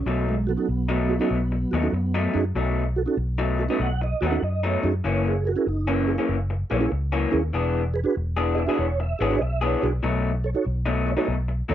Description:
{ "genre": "electric blues shuffle", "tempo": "96 BPM", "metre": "4/4", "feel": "swing 67% on 8ths", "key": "B mixolydian", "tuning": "A4 = 440 Hz", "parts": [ { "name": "mellow tonewheel organ", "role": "accompaniment", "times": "0.0-11.7 s", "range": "F#3 to F#5", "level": "-26 LUFS", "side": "right 4 dB", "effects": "slow rotary speaker, chorus vibrato" }, { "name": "electric guitar through a small old amp", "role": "riff", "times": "0.1-11.7 s", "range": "F#2 to G#4", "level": "-26 LUFS", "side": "left 4 dB", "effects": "none" }, { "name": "vintage muted fingered electric bass", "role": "bass", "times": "0.1-11.7 s", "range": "E1 to F#2", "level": "-25 LUFS", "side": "equal", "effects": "none" } ], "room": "light reverb", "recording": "none", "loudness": "-22 LUFS", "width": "side -11 dB against mid", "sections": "0.0-11.7 A section", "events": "none", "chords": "0.1 B7; 5.0 F#7; 7.5 E7; 10.0 B7", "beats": "| 0.06 0.68 1.31 1.93 | 2.55 3.18 3.80 4.42 | 5.05 5.67 6.29 6.92 | 7.54 8.16 8.79 9.41 | 10.03 10.65 11.28" }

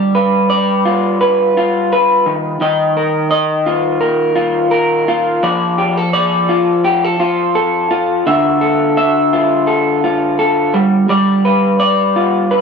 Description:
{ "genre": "indie pop", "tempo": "85 BPM", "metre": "4/4", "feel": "swing 55% on 16ths", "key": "unclear", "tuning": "A4 = 440 Hz", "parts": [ { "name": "electric guitar through a small old amp", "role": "solo", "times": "0.0-12.6 s", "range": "D3 to E5", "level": "-12 LUFS", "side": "equal", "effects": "lush chorus, warbly pitch drift, tape echo" } ], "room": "moderate spring reverb, RT60 1.5 s, digital ambience", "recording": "none", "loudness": "-11 LUFS", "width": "side -5 dB against mid", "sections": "0.0-12.6 A section", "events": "none", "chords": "0.0 G7; 2.3 Ebsus2; 5.4 F6; 8.3 Dmadd9; 10.7 G7", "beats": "0.50 1.21 1.92 | 2.62 3.33 4.03 4.74 | 5.45 6.15 6.86 7.56 | 8.27 8.97 9.68 10.39 | 11.09 11.80 12.50" }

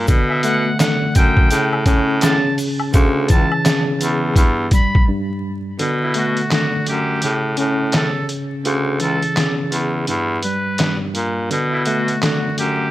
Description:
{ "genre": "hip hop, boom-bap hip-hop", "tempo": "84 BPM", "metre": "4/4", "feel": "swing 60% on 16ths", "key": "B minor", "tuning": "A4 = 440 Hz", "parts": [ { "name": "tine electric piano", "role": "accompaniment", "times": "0.0-12.9 s", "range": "G2 to C#4", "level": "-21 LUFS", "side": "equal", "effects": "overdrive, medium stereo tremolo, high-pass filter, low-pass filter" }, { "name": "breathy baritone saxophone", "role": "bass", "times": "0.0-12.9 s", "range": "C#2 to B2", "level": "-20 LUFS", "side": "equal", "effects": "none" }, { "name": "trip hop sampler-style drum kit", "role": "drums", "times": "0.1-12.8 s", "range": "handclaps, hi-hat, kick drum, snare drum", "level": "-18 LUFS", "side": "equal", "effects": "none" }, { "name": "tube shaker and woodblock", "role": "percussion", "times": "0.1-4.9 s", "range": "none", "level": "-29 LUFS", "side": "left 5 dB", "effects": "none" }, { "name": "trumpet with metal mute", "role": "melody", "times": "0.3-12.9 s", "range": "E4 to B5", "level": "-24 LUFS", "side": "equal", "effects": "high-pass filter, low-pass filter, tape echo" } ], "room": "small room ambience", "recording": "vinyl crackle", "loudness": "-15 LUFS", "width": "side -15 dB against mid", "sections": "0.0-5.8 A section; 5.8-12.9 B section", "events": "break 5.1-5.8, 5.8-12.9", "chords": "0.1 Bm7; 1.5 A; 2.9 Dsus2; 4.4 Em; 5.8 Bm7; 7.2 A; 8.7 Dsus2; 10.1 Em; 11.5 Bm7", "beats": "| 0.08 0.80 1.51 2.22 | 2.94 3.65 4.37 5.08 | 5.80 6.51 7.22 7.94 | 8.65 9.37 10.08 10.80 | 11.51 12.22" }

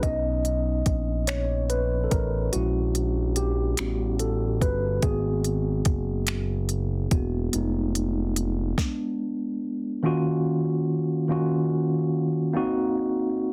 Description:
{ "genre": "slow six-eight R&B", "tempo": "48 BPM (dotted quarters)", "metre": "6/8", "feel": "straight", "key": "Eb minor", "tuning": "A4 = 441 Hz", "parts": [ { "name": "mellow tine electric piano", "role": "accompaniment", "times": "0.0-13.5 s", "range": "Eb3 to D#5", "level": "-28 LUFS", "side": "equal", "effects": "plate reverb" }, { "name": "smooth synth bass", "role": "bass", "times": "0.0-8.7 s", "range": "Fb1 to B1", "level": "-29 LUFS", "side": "equal", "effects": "none" }, { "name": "smooth R&B drum kit", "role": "drums", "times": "0.0-9.0 s", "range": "finger snaps, hi-hat, kick drum, snare drum", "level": "-28 LUFS", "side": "equal", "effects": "overdrive" } ], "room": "moderate studio reverb, RT60 0.5 s", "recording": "dense, heavily limited modern master", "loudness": "-26 LUFS", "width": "mono", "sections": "0.0-10.0 A section; 10.0-13.5 B section", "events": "tine electric piano solo 0.0-10.0; stop 8.8-10.0", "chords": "0.0 Bmaj7; 2.5 Bbm7b5; 3.8 A13; 5.0 Abm7; 7.5 Fm7b5; 8.8 Abdim; 10.0 Ebm7; 12.5 Cm7b5", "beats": "| 0.03 1.28 | 2.53 3.78 | 5.03 6.28 | 7.53 8.78 | 10.03 11.28 | 12.53" }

